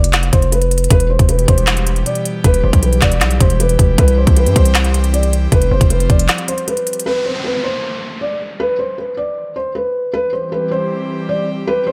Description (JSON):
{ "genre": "hip hop, trap", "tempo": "156 BPM", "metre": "4/4", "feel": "half-time", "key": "E phrygian", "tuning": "A4 = 441 Hz", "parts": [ { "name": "felt-muted upright piano", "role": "melody", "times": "0.0-11.9 s", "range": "B4 to D5", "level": "-21 LUFS", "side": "equal", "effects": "none" }, { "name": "distorted 808-style bass", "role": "bass", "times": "0.0-6.3 s", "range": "E1 to G2", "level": "-17 LUFS", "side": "equal", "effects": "distortion" }, { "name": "organic electronic drum kit", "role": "drums", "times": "0.0-7.1 s", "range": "handclaps, hi-hat, kick drum, snare drum", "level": "-16 LUFS", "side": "equal", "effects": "none" }, { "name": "airy breathy pad", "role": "sustained chords", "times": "0.9-7.0, 10.1-11.9 s", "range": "B2 to G4", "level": "-26 LUFS", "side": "equal", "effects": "chorus" }, { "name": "downlifter", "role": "sound effects", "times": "7.1-10.1 s", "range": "none", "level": "-29 LUFS", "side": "equal", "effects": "none" } ], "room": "little or no reverb", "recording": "none", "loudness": "-15 LUFS", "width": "mono", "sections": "0.0-7.1 A section; 7.1-11.9 B section", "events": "break 6.3-7.1", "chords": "0.0 Bdim/F; 0.9 Em; 4.0 C; 5.5 Fsus2; 7.1 N.C.; 10.1 C" }